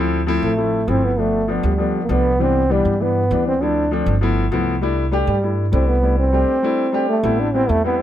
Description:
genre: jazz.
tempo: 198 BPM.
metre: 4/4.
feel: straight.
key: C major.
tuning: A4 = 444 Hz.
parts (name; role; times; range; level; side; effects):
warm upright piano; accompaniment; 0.0-8.0 s; E3 to G4; -21 LUFS; left 3 dB; none.
upright bass; bass; 0.0-8.0 s; G1 to G2; -21 LUFS; right 1 dB; none.
breathy trombone; melody; 0.4-8.0 s; G3 to D4; -19 LUFS; right 1 dB; tape echo.
room: little or no reverb.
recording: close, detailed microphones.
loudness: -16 LUFS.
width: side -11 dB against mid.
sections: 0.0-7.2 A section.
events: none.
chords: 0.0 Dm9; 1.2 G9; 2.4 Cmaj9; 3.6 Dm9; 4.2 G13; 4.8 C69; 7.2 Am7.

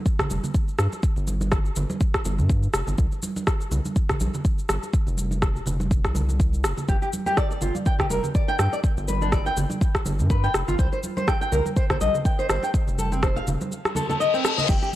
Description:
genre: afro house.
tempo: 123 BPM.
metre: 4/4.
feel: swing 56% on 16ths.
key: unclear.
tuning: A4 = 441 Hz.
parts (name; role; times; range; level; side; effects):
deep house drum kit; drums; 0.1-14.9 s; crash cymbal, rim click, shaker; -29 LUFS; equal; none.
electronic kick drum; drums; 0.1-14.8 s; none; -23 LUFS; equal; none.
congas; percussion; 0.1-15.0 s; none; -31 LUFS; right 2 dB; none.
round analog bass; bass; 0.3-14.8 s; F1 to G2; -25 LUFS; equal; sidechain pumping.
flamenco guitar; arpeggios; 6.9-14.9 s; C4 to G5; -26 LUFS; left 1 dB; vintage 12-bit sampler grit, sidechain pumping, analog delay.
reverse cymbal; sound effects; 14.0-14.7 s; none; -27 LUFS; left 6 dB; none.
room: light reverb.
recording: dry, gritty hardware recording, transformer saturation, cassette tape.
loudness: -21 LUFS.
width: side -14 dB against mid.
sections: 0.0-15.0 A section.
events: kick drops out 13.7-14.7; reverse cymbal 14.0-14.7.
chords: 0.0 N.C.; 3.0 C5; 4.9 F5; 6.9 G5; 8.8 G; 10.8 C7(no3); 12.7 F7.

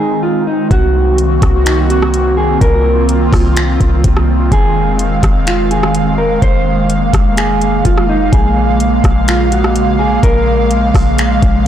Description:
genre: hip hop, atmospheric cloud-rap.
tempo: 126 BPM.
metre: 4/4.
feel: half-time.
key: unclear.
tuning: A4 = 442 Hz.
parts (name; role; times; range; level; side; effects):
mellow electric guitar; melody; 0.0-10.7 s; Eb4 to C5; -17 LUFS; right 2 dB; digital delay.
airy breathy pad; sustained chords; 0.0-11.7 s; Db3 to F5; -14 LUFS; equal; chorus, sidechain pumping.
warm 808-style bass; bass; 0.7-11.7 s; F1 to C2; -15 LUFS; equal; transformer saturation.
smooth R&B drum kit; drums; 0.7-11.5 s; finger snaps, hi-hat, kick drum, rim click; -14 LUFS; equal; soft clipping on snare.
room: light reverb.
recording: blown-out, overdriven recording, overdrive.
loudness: -10 LUFS.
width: side -10 dB against mid.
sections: 0.7-11.7 A section.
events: none.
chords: 0.0 Fm7; 0.7 Cm7b5; 4.5 Fm7; 8.3 Bbm7.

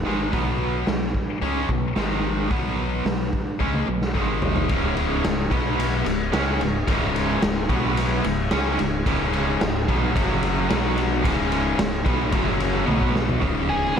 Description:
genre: classic rock.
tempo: 110 BPM.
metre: 4/4.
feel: straight.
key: Db mixolydian.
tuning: A4 = 437 Hz.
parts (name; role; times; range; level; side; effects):
biting overdriven guitar; riff; 0.0-14.0 s; Db2 to Db4; -27 LUFS; right 10 dB; tremolo, slapback echo.
growling fingered electric bass; bass; 0.0-14.0 s; Db1 to Db2; -28 LUFS; equal; overdrive.
tight distorted guitar; riff; 0.1-14.0 s; Db2 to Db4; -26 LUFS; left 9 dB; distortion, slapback echo.
raw garage drum kit; drums; 0.3-14.0 s; hi-hat, kick drum, ride cymbal, snare drum, toms; -24 LUFS; equal; none.
bright tonewheel organ; sustained chords; 4.7-14.0 s; Gb4 to Gb5; -34 LUFS; equal; none.
octave-fuzz lead guitar; melody; 13.7-14.0 s; Ab4 to Cb5; -23 LUFS; left 1 dB; distortion, slapback echo.
room: moderate lush hall reverb, RT60 2.5 s.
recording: big arena sound.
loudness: -20 LUFS.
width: side -7 dB against mid.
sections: 0.0-4.7 A section; 4.7-13.4 B section.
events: drum fill 3.6-4.7, 12.9-13.4.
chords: 0.3 Cb5; 2.0 Ab5; 2.5 Cb5; 4.1 Ab5; 4.7 Db; 5.5 Cb5; 6.1 Db; 7.7 Cb5; 8.2 Db; 10.2 Gb5; 10.7 Cb5; 11.2 Db; 12.3 Gb5; 12.9 Cb5; 13.4 Db.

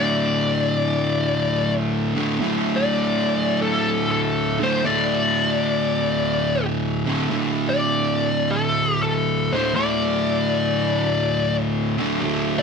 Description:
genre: metal.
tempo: 98 BPM.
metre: 4/4.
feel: swing 63% on 8ths.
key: unclear.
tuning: A4 = 440 Hz.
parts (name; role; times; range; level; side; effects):
fuzz lead guitar; melody; 0.0-12.6 s; A4 to D5; -22 LUFS; left 4 dB; wah, distortion.
fuzz guitar; riff; 0.0-12.6 s; D2 to D3; -21 LUFS; right 1 dB; distortion.
room: moderate studio reverb, RT60 0.8 s.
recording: band playing live in one room.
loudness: -19 LUFS.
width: side -5 dB against mid.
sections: 0.0-12.6 A section.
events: none.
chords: 0.0 D5.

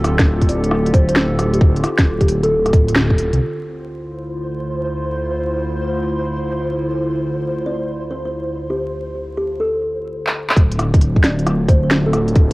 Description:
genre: future garage.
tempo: 134 BPM.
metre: 4/4.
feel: swing 67% on 16ths.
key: D minor.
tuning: A4 = 440 Hz.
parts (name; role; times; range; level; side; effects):
warbly tape-like pad; sustained chords; 0.0-12.5 s; D2 to C5; -23 LUFS; equal; chorus, built-in reverb, phaser, sidechain pumping.
swelling detuned saw bass; bass; 0.0-3.4, 10.6-12.5 s; D1 to C2; -18 LUFS; equal; tube saturation, sidechain pumping.
organic electronic drum kit; drums; 0.0-3.4, 10.3-12.5 s; handclaps, hi-hat, rim click, snare drum; -19 LUFS; equal; low-pass filter on hats, cassette tape, low-pass filter on snare, low-pass filter on room.
electronic kick drum; drums; 0.2-3.2, 10.6-12.5 s; none; -12 LUFS; equal; cassette tape.
kalimba; melody; 0.5-2.7, 7.7-12.2 s; G4 to D5; -23 LUFS; equal; vintage 12-bit sampler grit, cassette tape, tape echo.
flickering grainy texture; texture; 3.8-10.1 s; C5; -29 LUFS; equal; built-in reverb.
room: light reverb.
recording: home recording on cassette, vinyl crackle, faint mains hum.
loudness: -15 LUFS.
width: side -22 dB against mid.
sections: 0.0-3.4 A section; 3.4-10.6 B section; 10.6-12.5 C section.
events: band accent 3.0; filter sweep on drum 3.4-10.6; drum fill 10.2-10.6.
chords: 0.0 Fadd9/D; 3.4 Dm7.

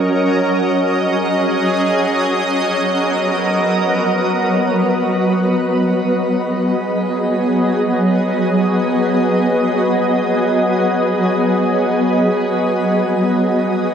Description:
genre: hip hop.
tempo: free time.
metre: none.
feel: none.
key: G# minor.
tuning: A4 = 440 Hz.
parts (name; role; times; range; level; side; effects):
shimmering ambient pad; solo; 0.0-13.9 s; F#3 to D#5; -14 LUFS; equal; chorus, built-in reverb.
room: wet shimmer reverb, RT60 6.1 s.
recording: none.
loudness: -14 LUFS.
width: side -8 dB against mid.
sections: 0.0-6.1 A section; 6.1-13.5 B section.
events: none.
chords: 0.0 D#m7; 2.5 Bmaj7; 6.1 G#m7.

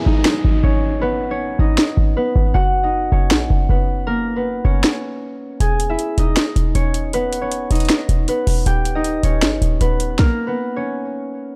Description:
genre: hip hop, trap.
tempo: 157 BPM.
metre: 4/4.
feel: half-time.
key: G# minor.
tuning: A4 = 440 Hz.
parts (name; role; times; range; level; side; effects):
concert harp; melody; 0.0-11.6 s; A#3 to G#5; -23 LUFS; equal; low-pass filter, digital delay.
downlifter; sound effects; 0.0-2.5 s; none; -34 LUFS; equal; none.
short 808-style bass; bass; 0.1-10.2 s; D#1 to A#1; -20 LUFS; equal; none.
trap drum kit; drums; 0.2-10.3 s; finger snaps, hi-hat, kick drum, snare drum; -21 LUFS; equal; none.
room: digital ambience.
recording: dark, warm production.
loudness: -18 LUFS.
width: mono.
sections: 0.0-11.6 A section.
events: break 0.0-5.6; stop 10.2-11.6.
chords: 0.0 G#m; 2.5 F#; 5.6 E; 8.7 D#.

